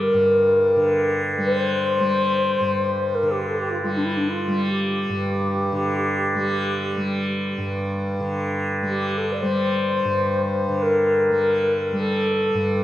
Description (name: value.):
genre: world meditative, free-time meditation music.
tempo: free time.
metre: none.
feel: none.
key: G minor.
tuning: A4 = 440 Hz.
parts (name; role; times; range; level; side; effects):
mellow xiao; melody; 0.0-12.8 s; D4 to D5; -21 LUFS; left 1 dB; tape echo.
tanpura; drone; 0.0-12.8 s; G2 to G3; -23 LUFS; equal; none.
room: wet recital hall reverb, RT60 1.7 s, studio reverb.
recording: none.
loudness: -19 LUFS.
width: side -13 dB against mid.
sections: 0.0-12.8 A section.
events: none.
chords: none.